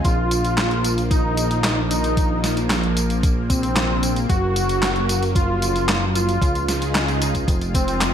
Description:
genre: synthwave.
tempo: 113 BPM.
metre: 4/4.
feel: straight.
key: Bb minor.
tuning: A4 = 440 Hz.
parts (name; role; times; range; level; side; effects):
wide unison lead; melody; 0.0-8.1 s; C4 to Gb4; -23 LUFS; equal; digital delay.
lush unison pad; sustained chords; 0.0-8.1 s; Db3 to Ab4; -27 LUFS; right 1 dB; chorus, phaser, sidechain pumping.
chorused synth bass; bass; 0.0-8.1 s; F1 to Db2; -23 LUFS; equal; none.
clean 12-bit digital drum machine; drums; 0.0-8.1 s; handclaps, hi-hat, snare drum, tambourine; -24 LUFS; equal; gated reverb.
electronic kick drum; drums; 0.0-7.9 s; none; -20 LUFS; equal; none.
room: light reverb.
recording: none.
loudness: -18 LUFS.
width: side -9 dB against mid.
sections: 0.0-8.1 A section.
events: none.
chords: 0.0 Bb5; 4.3 Gb; 6.4 Dbadd9; 7.5 Fm.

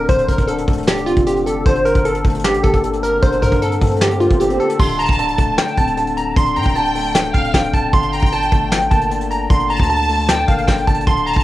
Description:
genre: hip hop, trap.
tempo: 153 BPM.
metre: 4/4.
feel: half-time.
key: unclear.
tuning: A4 = 440 Hz.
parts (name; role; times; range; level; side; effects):
glassy wavetable pluck; melody; 0.0-11.4 s; F4 to C6; -17 LUFS; right 1 dB; chorus, low-pass filter, cassette tape, plate reverb.
dark concert grand piano; accompaniment; 0.0-11.4 s; D3 to C4; -23 LUFS; left 6 dB; low-pass filter, cassette tape, plate reverb.
long sustained 808-style bass; bass; 0.0-11.4 s; C1 to A2; -24 LUFS; equal; none.
soft brush drum kit; drums; 0.1-11.4 s; crash cymbal, hi-hat, kick drum, snare drum; -17 LUFS; equal; cassette tape.
swell; sound effects; 3.7-4.8 s; none; -26 LUFS; right 3 dB; none.
rich studio violin section; second line; 5.0-11.4 s; F5 to A5; -25 LUFS; right 1 dB; cassette tape, plate reverb, tape echo.
room: light reverb.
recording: home recording on cassette.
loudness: -14 LUFS.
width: side -15 dB against mid.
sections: 0.0-4.8 A section; 4.8-11.4 B section.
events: swell 3.7-4.8.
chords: 0.0 Dm7; 1.7 Gmadd9; 4.8 D5; 7.9 Gmadd9.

